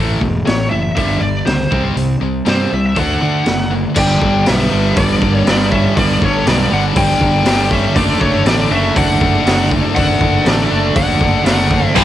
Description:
hard rock; 120 BPM; 4/4; straight; A4 = 444 Hz
overdriven semi-hollow guitar; riff; 0.0-12.0 s; G2 to D4; -19 LUFS; right 6 dB; cassette tape
tight distorted guitar; riff; 0.0-12.0 s; G2 to D4; -20 LUFS; left 9 dB; distortion, cassette tape
fuzz fingered electric bass; bass; 0.0-12.0 s; E1 to D3; -19 LUFS; equal; overdrive
raw garage drum kit; drums; 0.2-12.0 s; crash cymbal, hi-hat, kick drum, snare drum; -18 LUFS; equal; cassette tape
high-gain lead guitar; melody; 0.5-12.0 s; C5 to G5; -19 LUFS; left 1 dB; distortion, cassette tape
octave-fuzz lead guitar; second line; 4.0-12.0 s; A3 to D4; -23 LUFS; right 1 dB; distortion, cassette tape, analog delay
tight distorted guitar; riff; 12.0 s; G2 to G3; -10 LUFS; equal; distortion, cassette tape
light reverb, small room ambience; home recording on cassette; -12 LUFS; side -12 dB against mid
0.0-4.0 A section; 4.0-12.0 B section
0.0 A5; 1.0 G5; 1.7 C5; 3.0 D; 4.0 G; 8.0 D/F#
0.47 0.97 1.47 | 1.97 2.47 2.97 3.47 | 3.97 4.47 4.97 5.47 | 5.97 6.47 6.97 7.47 | 7.97 8.47 8.97 9.47 | 9.97 10.47 10.96 11.46 | 11.96

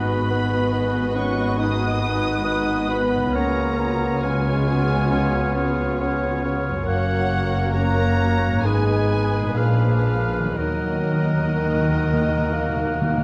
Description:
classical, slow romantic movement for symphony orchestra; 58-71 BPM; 4/4; rubato; A4 = 440 Hz
muted studio violin section; melody; 0.0-13.2 s; Eb5 to Eb6; -34 LUFS; equal
clear oboe; second line; 0.0-13.2 s; Bb4 to Db5; -32 LUFS; equal
mellow clarinet; second line; 0.0-13.2 s; Db4 to Eb4; -35 LUFS; equal
mellow hollow silver concert flute; second line; 0.0-13.2 s; Eb6 to Gb6; -34 LUFS; equal
muted chamber violin section; second line; 0.0-13.2 s; Gb4 to Eb5; -38 LUFS; equal
mellow bassoon; accompaniment; 0.0-13.2 s; Eb3 to Cb4; -31 LUFS; equal
muted studio viola section; accompaniment; 0.0-13.2 s; Bb3 to Gb4; -32 LUFS; equal
mellow French horn section; sustained chords; 0.0-13.2 s; Eb3 to Eb4; -29 LUFS; equal
concert harp; arpeggios; 0.0-13.2 s; Gb2 to Cb5; -32 LUFS; equal
muted chamber double bass section; bass; 0.0-13.2 s; Gb1 to Eb2; -29 LUFS; equal
muted studio cello section; bass; 0.0-13.2 s; Gb2 to Eb3; -29 LUFS; equal
timpani; percussion; 10.6-13.2 s; Eb3; -31 LUFS; equal
wet scoring stage reverb, RT60 1.7 s; dark, warm production; -21 LUFS; mono
0.0-13.2 A section
timpani fill 10.6-13.2
0.0 Abm7; 3.3 Db7; 6.9 Gb; 8.7 Abm; 9.6 Bb7b9; 10.6 Ebm
0.74 1.59 2.46 | 3.35 4.23 5.11 6.00 | 6.88 7.75 8.66 9.58 | 10.58 11.57 12.53

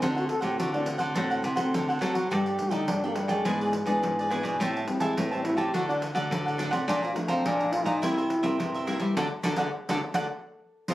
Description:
samba and choro; 105 BPM; 4/4; straight; A4 = 440 Hz
warm trombone; melody; 0.0-10.9 s; F3 to A4; -29 LUFS; equal
cavaquinho; accompaniment; 0.0-10.9 s; D4 to Bb5; -31 LUFS; right 1 dB
nylon-string guitar; accompaniment; 0.0-10.9 s; F2 to F#4; -33 LUFS; left 2 dB
nylon-string guitar; bass; 0.0-10.9 s; F#2 to G3; -31 LUFS; equal
pandeiro; percussion; 0.0-10.9 s; -34 LUFS; right 1 dB
light reverb; recorded on a phone in the room, studio ambience, compression; -25 LUFS; side -15 dB against mid
0.0-10.9 A section
trombone solo 0.0-10.9; band accent 9.2-10.9
0.0 D7; 2.3 Gsus2; 3.5 E7/G#; 4.6 Am7; 5.7 D; 6.9 Bbmaj7; 8.0 C7; 9.2 D; 10.3 N.C.
| 0.03 0.60 1.17 1.74 | 2.31 2.89 3.46 4.03 | 4.60 5.17 5.74 6.32 | 6.89 7.46 8.03 8.60 | 9.17 9.74 10.32 10.89

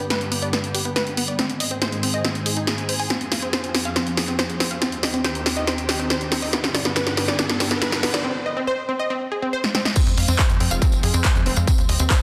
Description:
uplifting trance; 140 BPM; 4/4; straight; A4 = 438 Hz
analog string pad; sustained chords; 0.0-12.2 s; Eb2 to Ab4; -32 LUFS; equal; ensemble chorus, phaser, vintage 12-bit sampler grit, sidechain pumping
unison pluck; arpeggios; 0.0-12.2 s; B3 to Ab5; -28 LUFS; equal; cassette tape, sidechain pumping, tape echo
punchy analog drum machine; drums; 0.0-12.2 s; crash cymbal, handclaps, hi-hat, snare drum; -25 LUFS; equal; overdrive
riser; sound effects; 4.9-8.2 s; -37 LUFS; equal
electronic kick drum; drums; 10.0-12.2 s; -21 LUFS; equal; distortion, overdrive
tambourine; percussion; 10.0-12.2 s; -33 LUFS; equal
tight sequencer bass; bass; 10.1-12.1 s; F1 to F2; -24 LUFS; equal; sidechain pumping
wet recital hall reverb, RT60 1.5 s; dense, heavily limited modern master; -22 LUFS; mono
0.0-10.0 A section; 10.0-12.2 B section
build-up 0.0-10.0; drum fill 0.0-8.2, 9.6-10.0; break 8.2-10.0; drop 10.0-12.2
0.0 G; 1.4 Ab; 3.1 Fm; 4.8 Cm/Eb; 6.5 G; 8.2 Ab (rootless); 10.0 Fm; 11.7 Cm/Eb
0.10 0.53 0.96 | 1.39 1.82 2.25 2.67 | 3.10 3.53 3.96 4.39 | 4.82 5.25 5.67 6.10 | 6.53 6.96 7.39 7.82 | 8.25 8.68 9.10 9.53 | 9.96 10.39 10.82 11.25 | 11.68 12.10

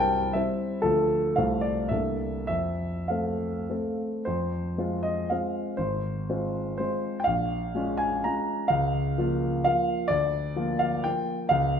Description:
classical, romantic triple-time dance for piano with dotted rhythms; 96-136 BPM; 3/4; rubato; F major, F minor from 4.3 s; A4 = 440 Hz
warm grand piano; solo; 0.0-11.8 s; Ab1 to Bb5; -24 LUFS; equal
wet recital hall reverb, RT60 1.4 s; recorded in a church or concert hall; -25 LUFS; side -7 dB against mid
0.0-4.3 A section; 4.3-11.8 B section
0.0 C7; 0.8 Dm; 1.4 F/C; 1.9 C13; 2.5 F; 4.3 Fm; 5.8 Fm/Ab; 7.3 Bbm7; 8.7 Bbm/Db; 10.1 Bb/D
0.35 | 0.84 1.37 1.93 | 2.50 3.10 3.71 | 4.27 4.79 5.32 | 5.80 6.30 6.80 | 7.26 7.75 8.24 | 8.70 9.17 9.64 | 10.10 10.56 11.05 | 11.51

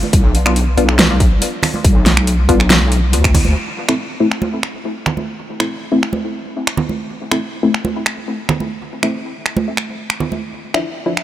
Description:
deep dubstep; 140 BPM; 4/4; half-time; A minor; A4 = 441 Hz
congas; percussion; 0.0-10.4 s; -22 LUFS; right 4 dB; dub echo
wobble bass; bass; 0.1-3.5 s; B1 to D2; -14 LUFS; equal; chorus
dubstep drum kit; drums; 0.1-11.2 s; finger snaps, hi-hat, snare drum; -18 LUFS; equal
electronic kick drum; drums; 0.1-3.4 s; -14 LUFS; equal
filtered dub chord stab; stabs; 0.5-11.1 s; F3 to F4; -20 LUFS; left 2 dB; phaser, dub echo
light reverb; -14 LUFS; side -12 dB against mid
0.0-3.6 A section; 3.6-11.2 B section
band accent 3.2
0.0 Bm; 3.6 Am; 10.4 Dmadd9
| 0.13 0.56 0.99 1.42 | 1.85 2.27 2.70 3.13 | 3.56 3.99 4.42 4.85 | 5.27 5.70 6.13 6.56 | 6.99 7.42 7.85 8.27 | 8.70 9.13 9.56 9.99 | 10.42 10.85

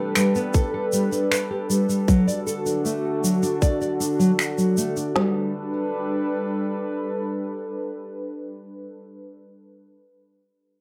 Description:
folktronica; 78 BPM; 4/4; straight; G major; A4 = 442 Hz
warbly tape-like pad; sustained chords; 0.0-9.0 s; D3 to B4; -28 LUFS; equal; chorus, built-in reverb
nylon-string guitar; arpeggios; 0.0-5.5 s; F#3 to D5; -25 LUFS; equal; low-pass filter, delay
finger snaps and shaker; drums; 0.2-5.1 s; -30 LUFS; equal
organic electronic drum kit; drums; 0.5-5.3 s; kick drum, snare drum; -24 LUFS; equal
wet studio reverb, RT60 0.7 s; rough home demo mix; -23 LUFS; mono
0.0-5.2 A section; 5.2-8.2 B section
filter sweep on nylon-string guitar 0.0-5.2
0.0 Gadd9; 2.1 D; 5.2 Gadd9
0.54 1.31 | 2.08 2.85 3.62 4.39 | 5.16 5.93 6.70 7.46

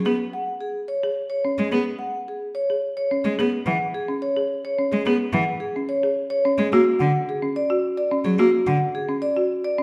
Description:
classical, minimalist pattern music; 108 BPM; 3/4; straight; A4 = 440 Hz
vibraphone with medium mallets; melody; 0.0-9.8 s; G#4 to F#5; -27 LUFS; equal
rich cello; accompaniment; 0.0-8.8 s; D3 to B3; -26 LUFS; equal
folk marimba with medium mallets; arpeggios; 0.1-9.8 s; C#4 to G#4; -27 LUFS; equal
wet recital hall reverb, RT60 1.4 s; -23 LUFS; mono
0.0-9.8 A section
0.1 F#sus2 (rootless); 3.4 E6 (rootless); 6.7 F#5
| 0.06 0.62 1.17 | 1.73 2.28 2.84 | 3.39 3.95 4.50 | 5.06 5.62 6.17 | 6.73 7.28 7.84 | 8.39 8.95 9.51

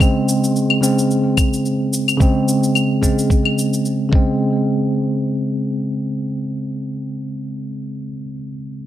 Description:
organic downtempo; 109 BPM; 4/4; swing 55% on 16ths; A4 = 440 Hz
bell-like tine electric piano; accompaniment; 0.0-8.9 s; Db3 to C4; -18 LUFS; equal; fast stereo tremolo, sidechain pumping, tape echo
claves and cabasa; drums; 0.0-4.0 s; -22 LUFS; left 4 dB
electronic kick drum; drums; 0.0-4.2 s; -15 LUFS; equal
bronze singing bowl; texture; 0.0-4.4 s; Ab4; -39 LUFS; right 1 dB
light reverb, digital ambience; -16 LUFS; side -12 dB against mid
0.0-4.4 A section; 4.4-6.6 B section
0.0 Bbm7 (rootless); 4.4 Abadd11/Db
| 0.00 0.55 1.10 1.65 | 2.20 2.75 3.30 3.85 | 4.40 4.95 5.50 6.05

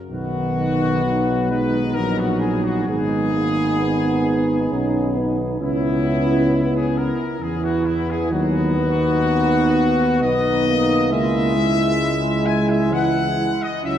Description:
classical, hymn-like piece for brass band; 66 BPM; 3/4; rubato; B major; A4 = 441 Hz
bright trumpet section; melody; 0.1-14.0 s; E4 to G#5; -25 LUFS; left 4 dB
mellow French horn section; second line; 0.1-14.0 s; D#4 to E4; -23 LUFS; right 4 dB
bright trombone section; accompaniment; 0.1-14.0 s; F#3 to B3; -26 LUFS; left 2 dB
mellow euphonium; accompaniment; 0.1-14.0 s; D#3 to C#4; -23 LUFS; right 1 dB
mellow tuba; bass; 0.1-14.0 s; G#1 to E2; -24 LUFS; left 1 dB
wet church reverb, RT60 3.7 s; dark, warm production; -17 LUFS; side -10 dB against mid
0.1-14.0 A section
0.1 B; 2.9 G#m; 5.6 C#m7; 8.3 B/D#; 11.1 C#m
| 0.10 1.03 1.96 | 2.88 3.79 4.71 | 5.61 6.53 7.41 | 8.32 9.24 10.22 | 11.12 12.01 12.92 | 13.85

